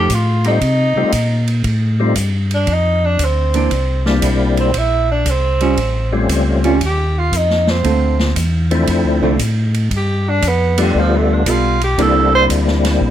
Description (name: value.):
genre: soul jazz organ trio.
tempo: 116 BPM.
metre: 4/4.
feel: swing 68% on 8ths.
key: C mixolydian.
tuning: A4 = 440 Hz.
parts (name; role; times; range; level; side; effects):
clear tenor saxophone; melody; 0.0-12.4 s; F3 to C5; -18 LUFS; right 2 dB; none.
archtop guitar, miked and amplified; accompaniment; 0.0-0.1, 3.5-12.3 s; D3 to A4; -18 LUFS; right 4 dB; none.
mellow tonewheel organ; bass; 0.0-13.1 s; A1 to C3; -16 LUFS; equal; slow rotary speaker.
swinging big-band drum kit; drums; 0.1-13.1 s; hi-hat, kick drum, ride cymbal, snare drum; -24 LUFS; right 1 dB; none.
percussive tonewheel organ; melody; 0.5-13.1 s; F3 to F4; -17 LUFS; left 3 dB; slow rotary speaker, overdrive, chorus vibrato.
room: light reverb.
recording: none.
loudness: -13 LUFS.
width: side -11 dB against mid.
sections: 0.0-13.1 A section.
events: tenor saxophone solo 0.0-13.1.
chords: 0.0 F9; 3.7 C9; 5.8 A7alt; 7.8 Dm7; 9.9 G9; 12.0 C9.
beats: 0.10 0.61 1.13 | 1.65 2.17 2.68 3.20 | 3.71 4.23 4.75 5.26 | 5.78 6.30 6.82 7.33 | 7.85 8.36 8.88 9.40 | 9.91 10.43 10.95 11.46 | 11.98 12.50 13.01.